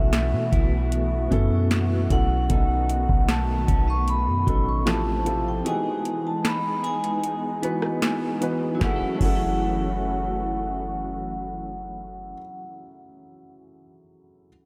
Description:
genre	contemporary R&B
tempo	76 BPM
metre	4/4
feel	straight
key	F# dorian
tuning	A4 = 440 Hz
part	vibraphone with medium hard mallets	melody	0.0-12.4 s	E5 to C#6	-32 LUFS	equal	delay
part	dark grand piano	accompaniment	0.0-14.5 s	B2 to B4	-32 LUFS	equal	none
part	warm analog pad	sustained chords	0.0-12.0 s	C3 to F#4	-35 LUFS	equal	chorus
part	clean electric guitar	arpeggios	0.0-12.9 s	B2 to A4	-36 LUFS	equal	subtle chorus, delay
part	clean 808-style bass	bass	0.0-12.4 s	F#1 to B2	-28 LUFS	equal	none
part	downlifter	sound effects	0.0-2.5 s	none	barely audible	none	none
part	booming analog drum machine	drums	0.1-9.4 s	crash cymbal, hi-hat, kick drum, rim click, snare drum	-28 LUFS	equal	none
room	moderate huge ambient reverb, RT60 4.0 s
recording	dreamy mix soaked in reverb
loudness	-24 LUFS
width	mono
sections	0.0-8.8 A section; 8.8-12.0 B section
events	break 5.7-8.8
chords	0.0 B7sus4; 2.5 B7; 4.9 Fmaj7; 5.7 Emaj7; 8.8 F#m7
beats	0.13 0.92 1.71 | 2.50 3.29 4.08 4.87 | 5.66 6.45 7.24 8.02 | 8.81 9.60 10.39 11.18

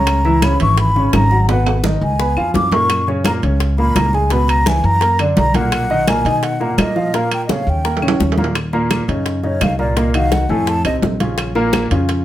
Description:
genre	Afro-Cuban jazz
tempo	170 BPM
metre	4/4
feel	straight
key	Eb minor from 8.6 s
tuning	A4 = 440 Hz
part	mellow hollow concert flute	melody	0.0-11.0 s	Db5 to D6	-19 LUFS	equal	none
part	warm baby grand piano	accompaniment	0.0-12.2 s	A2 to B5	-19 LUFS	equal	none
part	upright bass	bass	0.0-12.2 s	G#1 to B2	-18 LUFS	equal	none
part	bongos	percussion	0.1-12.2 s	none	-26 LUFS	left 6 dB	none
part	claves	percussion	0.1-11.9 s	none	-28 LUFS	left 4 dB	none
part	congas	percussion	0.1-12.2 s	none	-23 LUFS	equal	none
part	timbales	percussion	0.1-12.2 s	none	-24 LUFS	right 7 dB	none
room	moderate studio reverb, RT60 0.6 s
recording	none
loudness	-13 LUFS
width	side -13 dB against mid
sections	0.0-8.6 A section; 8.6-12.2 B section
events	drum fill 1.5-2.9, 7.5-8.6; flute solo 8.6-12.2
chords	0.1 C#m7; 1.5 G#m7; 2.2 C#7; 2.9 F#add9; 4.3 C#m7; 5.0 F#aug; 5.7 Bmaj7; 7.1 D#7; 8.6 Ebm7; 10.0 Cm7b5; 10.7 F7; 11.4 Bbm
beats	| 0.07 0.42 0.78 1.13 | 1.48 1.84 2.19 2.54 | 2.90 3.25 3.60 3.96 | 4.31 4.66 5.02 5.37 | 5.72 6.08 6.43 6.78 | 7.14 7.49 7.84 8.20 | 8.55 8.90 9.26 9.61 | 9.97 10.32 10.67 11.03 | 11.38 11.73 12.09

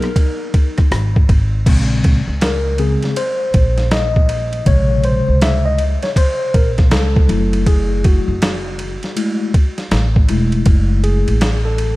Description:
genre	hip hop, jazz-hop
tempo	80 BPM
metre	4/4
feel	swing 64% on 16ths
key	unclear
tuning	A4 = 440 Hz
part	growling alto saxophone	melody	0.0-0.9 s	Bb4	-29 LUFS	left 1 dB	none
part	vibraphone with medium mallets	second line	0.0-0.9 s	Eb4	-32 LUFS	left 2 dB	none
part	mellow tine electric piano	accompaniment	0.0-12.0 s	C3 to E5	-19 LUFS	left 1 dB	medium stereo tremolo
part	boom bap sampler-style drum kit	drums	0.0-12.0 s	crash cymbal, hi-hat, kick drum, ride cymbal, rim click, snare drum	-16 LUFS	equal	overdrive
part	upright bass	bass	0.9-12.0 s	Fb1 to Db2	-17 LUFS	equal	none
room	light reverb, studio reverb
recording	vinyl crackle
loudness	-13 LUFS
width	side -19 dB against mid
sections	0.0-1.7 A section; 1.7-12.0 B section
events	tine electric piano solo 1.7-12.0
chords	0.0 Absus2; 1.7 Bbm9; 7.3 Gbm9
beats	0.16 0.91 | 1.66 2.41 3.16 3.91 | 4.66 5.41 6.16 6.91 | 7.66 8.41 9.16 9.91 | 10.66 11.41

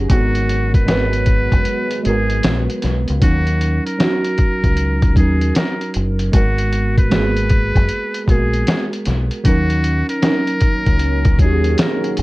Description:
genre	lo-fi hip hop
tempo	77 BPM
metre	4/4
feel	swing 64% on 16ths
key	G# minor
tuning	A4 = 442 Hz
part	muted felt-like synth keys	accompaniment	0.0-12.2 s	F#3 to B4	-21 LUFS	right 2 dB	chorus, cassette tape, low-pass filter
part	deep dark ambient pad	sustained chords	0.0-3.2, 10.2-12.2 s	D#3 to F#4	-28 LUFS	left 1 dB	chorus, built-in reverb, low-pass filter
part	deep dub fingered electric bass	bass	0.0-12.2 s	F#1 to D#2	-18 LUFS	equal	none
part	trumpet with metal mute	melody	0.1-12.1 s	F#4 to B4	-24 LUFS	equal	low-pass filter
part	lo-fi sampler-style drum kit	drums	0.1-12.2 s	hi-hat, kick drum, snare drum	-17 LUFS	equal	none
room	light reverb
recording	cassette tape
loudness	-14 LUFS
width	side -20 dB against mid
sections	0.0-3.2 A section; 3.2-12.2 B section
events	break 1.7-3.2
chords	0.1 G#m9; 3.2 D#m7; 6.3 G#m9; 9.5 D#m7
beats	| 0.10 0.88 1.66 2.44 | 3.22 4.00 4.78 5.55 | 6.33 7.11 7.89 8.67 | 9.45 10.23 11.01 11.79

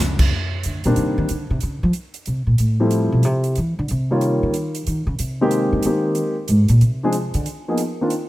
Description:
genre	jazz piano trio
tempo	185 BPM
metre	4/4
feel	swing 64% on 8ths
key	C minor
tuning	A4 = 440 Hz
part	upright bass	bass	0.0-7.5 s	Db2 to E#3	-19 LUFS	equal	none
part	swinging big-band drum kit	drums	0.2-8.2 s	crash cymbal, hi-hat, kick drum	-24 LUFS	right 1 dB	none
part	warm grand piano	melody	0.9-8.1 s	Eb3 to Db5	-20 LUFS	left 1 dB	none
room	light reverb, small room ambience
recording	rough home demo mix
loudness	-17 LUFS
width	side -16 dB against mid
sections	0.3-8.3 A section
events	upright bass solo 0.3-8.3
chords	0.3 Cm7; 1.6 A(#9); 2.9 Fmaj7; 4.2 Eb7; 5.5 Abmaj9; 6.8 D7(b5, no3); 7.5 Ebsus2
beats	| 0.32 0.64 0.97 1.29 | 1.62 1.94 2.27 2.59 | 2.92 3.24 3.57 3.89 | 4.22 4.54 4.87 5.19 | 5.52 5.84 6.17 6.49 | 6.82 7.14 7.47 7.79 | 8.12

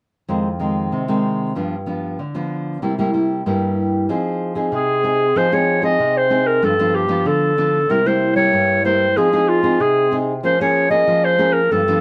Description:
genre	samba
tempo	95 BPM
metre	4/4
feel	straight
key	F minor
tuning	A4 = 438 Hz
part	nylon-string guitar	accompaniment	0.3-12.0 s	F2 to Ab4	-21 LUFS	equal	none
part	warm clarinet	melody	4.7-12.0 s	F4 to Eb5	-18 LUFS	equal	none
room	moderate studio reverb, RT60 0.5 s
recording	none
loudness	-18 LUFS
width	mono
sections	0.3-5.4 A section; 5.4-12.0 B section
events	none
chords	0.3 Fm7; 1.6 G7; 2.8 C7; 4.1 Fm7; 6.6 G7; 7.9 C7; 9.2 Fm7; 10.4 Bbm7/F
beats	| 0.29 0.92 1.56 2.19 | 2.83 3.46 4.09 4.73 | 5.36 6.00 6.63 7.26 | 7.90 8.53 9.17 9.80 | 10.44 11.07 11.71

